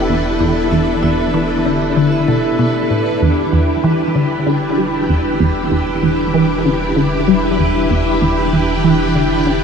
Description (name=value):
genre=ambient, sequencer-driven space music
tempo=96 BPM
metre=4/4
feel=straight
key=unclear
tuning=A4 = 440 Hz
part: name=string machine, full ensemble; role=sustained chords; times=0.0-9.6 s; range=D4 to A4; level=-18 LUFS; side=equal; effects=ensemble chorus
part: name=vibraphone with medium hard mallets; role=arpeggios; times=0.0-3.2 s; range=B3 to E5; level=-21 LUFS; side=equal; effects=auto-pan, analog delay
part: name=round analog bass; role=bass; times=0.0-9.6 s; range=E1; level=-26 LUFS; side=equal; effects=none
part: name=bubbling stepped-filter texture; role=texture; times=0.0-9.6 s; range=B4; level=-24 LUFS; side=right 1 dB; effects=chorus, built-in reverb
part: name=resonant blip pluck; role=riff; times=0.1-9.6 s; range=E2 to G3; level=-16 LUFS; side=equal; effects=phaser, analog chorus, analog delay
room=wet huge ambient reverb, RT60 7.8 s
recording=in a vast, echoing space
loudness=-13 LUFS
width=side -6 dB against mid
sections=0.0-3.2 A section; 3.2-9.6 B section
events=none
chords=0.0 Em7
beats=0.09 | 0.72 1.34 1.97 2.59 | 3.22 3.84 4.47 5.09 | 5.72 6.34 6.97 7.59 | 8.22 8.84 9.47